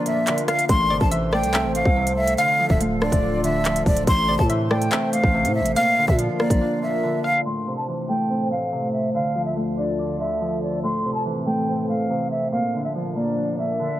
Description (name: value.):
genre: hip hop, drill.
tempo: 142 BPM.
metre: 4/4.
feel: half-time.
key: A phrygian.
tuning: A4 = 440 Hz.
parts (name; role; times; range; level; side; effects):
breathy jazz flute; melody; 0.0-14.0 s; D5 to C6; -23 LUFS; equal; tape echo.
Celtic harp; accompaniment; 0.0-14.0 s; A2 to D5; -25 LUFS; right 1 dB; none.
hollow soft pad; sustained chords; 0.0-14.0 s; D2 to D5; -30 LUFS; left 1 dB; chorus.
drill drum kit; drums; 0.1-7.6 s; handclaps, hi-hat, kick drum, rim click; -22 LUFS; equal; none.
hollow square pluck; second line; 0.5-7.4 s; D5 to F5; -31 LUFS; left 4 dB; chorus, tape echo.
growling 808-style bass; bass; 0.7-6.6 s; D1 to Bb2; -25 LUFS; equal; none.
room: light reverb, digital ambience.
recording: low-pass filter.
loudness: -19 LUFS.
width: side -13 dB against mid.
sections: 0.0-7.5 A section; 7.5-14.0 B section.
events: break 0.0-0.7, 6.6-7.5; filter sweep 7.5-14.0.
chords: 0.0 Bb; 0.7 Am; 2.4 Dm; 4.1 Am; 5.8 Bb; 7.5 Am; 9.1 Dm; 10.8 Am; 12.5 Bb.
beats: 0.27 | 0.69 1.11 1.54 1.96 | 2.38 2.81 3.23 3.65 | 4.07 4.50 4.92 5.34 | 5.76 6.19 6.61 7.03 | 7.45 7.88 8.30 8.72 | 9.14 9.57 9.99 10.41 | 10.83 11.26 11.68 12.10 | 12.52 12.95 13.37 13.79.